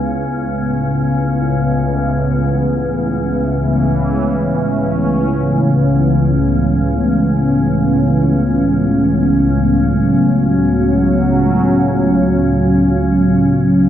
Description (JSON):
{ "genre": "dark ambient drone", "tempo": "free time", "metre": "none", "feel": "none", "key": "unclear", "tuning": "A4 = 440 Hz", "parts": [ { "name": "sweeping resonant pad", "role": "sustained chords", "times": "0.0-13.9 s", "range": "C#2 to E4", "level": "-13 LUFS", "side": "equal", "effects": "chorus" }, { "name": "organ-like drone", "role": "drone", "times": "0.0-13.9 s", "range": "C#2 to C#3", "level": "-18 LUFS", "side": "left 1 dB", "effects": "ensemble chorus, built-in reverb" } ], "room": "wet spring reverb, RT60 2.5 s", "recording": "none", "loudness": "-12 LUFS", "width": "side -11 dB against mid", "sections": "0.0-13.9 A section", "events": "none", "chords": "0.1 A/C#", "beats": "free time" }